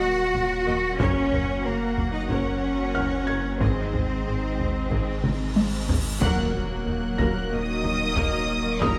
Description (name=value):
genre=cinematic, hybrid orchestral and electronic film score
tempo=92 BPM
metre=4/4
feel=straight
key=Eb dorian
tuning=A4 = 439 Hz
part: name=rich symphonic violin section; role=melody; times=0.0-9.0 s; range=Eb5 to Gb6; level=-37 LUFS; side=equal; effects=none
part: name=warm symphonic violin section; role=second line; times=0.0-9.0 s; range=Bb4 to Gb5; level=-38 LUFS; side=equal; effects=none
part: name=dark French horn section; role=sustained chords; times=0.0-9.0 s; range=Eb3 to Bb4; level=-34 LUFS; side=equal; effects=none
part: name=hollow soft pad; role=sustained chords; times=0.0-9.0 s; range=Gb3 to Bb4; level=-34 LUFS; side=equal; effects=chorus
part: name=rich symphonic cello section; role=bass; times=0.0-9.0 s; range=Bb2 to Gb4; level=-33 LUFS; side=equal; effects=none
part: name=soft dub sub bass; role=bass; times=0.0-9.0 s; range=Eb1 to Ab1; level=-34 LUFS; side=equal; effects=none
part: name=felt-muted upright piano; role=texture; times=0.0-9.0 s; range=Gb5 to Bb6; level=-36 LUFS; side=equal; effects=none
part: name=taiko ensemble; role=drums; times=0.3-9.0 s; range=none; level=-30 LUFS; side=equal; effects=none
part: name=clear symphonic viola section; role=accompaniment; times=0.7-9.0 s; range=Eb3 to Eb5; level=-38 LUFS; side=equal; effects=none
part: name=rich symphonic double bass section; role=bass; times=0.7-8.9 s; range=Gb1 to Eb2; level=-34 LUFS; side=equal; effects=none
part: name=cymbal swell and impact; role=sound effects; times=5.4-8.8 s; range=none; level=-36 LUFS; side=equal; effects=none
room=moderate scoring stage reverb, RT60 1.6 s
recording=none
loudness=-25 LUFS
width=mono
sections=0.0-6.2 A section; 6.2-9.0 B section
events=cymbal swell 5.4-6.2; drum fill 5.2-6.2; band accent 6.2-6.9; impact 6.2-8.8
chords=0.0 Ebm; 1.0 Gb; 3.6 Ab; 6.2 Ebm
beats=0.34 | 0.99 1.65 2.30 2.95 | 3.60 4.25 4.91 5.56 | 6.21 6.86 7.51 8.17 | 8.82